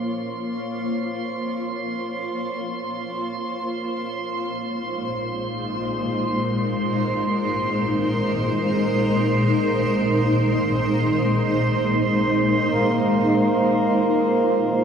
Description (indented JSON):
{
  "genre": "ambient",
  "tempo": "free time",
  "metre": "none",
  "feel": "none",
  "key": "Bb minor",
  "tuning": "A4 = 440 Hz",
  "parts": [
    { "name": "granular cloud pad", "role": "sustained chords", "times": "0.0-14.8 s", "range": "Bb2 to Db5", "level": "-21 LUFS", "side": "equal", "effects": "built-in reverb" },
    { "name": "drifting glass-harmonics texture", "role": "texture", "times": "0.0-12.7 s", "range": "C6", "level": "-29 LUFS", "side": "right 3 dB", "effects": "chorus, built-in reverb" },
    { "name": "pedal harmonium", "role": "drone", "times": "12.7-14.8 s", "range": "Bb3 to Bb4", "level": "-22 LUFS", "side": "equal", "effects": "none" }
  ],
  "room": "wet huge ambient reverb, RT60 8.0 s",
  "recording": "none",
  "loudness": "-20 LUFS",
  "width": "side -7 dB against mid",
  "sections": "0.0-12.7 A section; 12.7-14.8 B section",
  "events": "fade-in on ambient pad 0.0-12.7; fade-in on synth texture 0.0-12.7; filter sweep on ambient pad 12.7-14.8",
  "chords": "0.0 Bbm; 3.8 Ab/Bb; 12.7 Bbmadd9"
}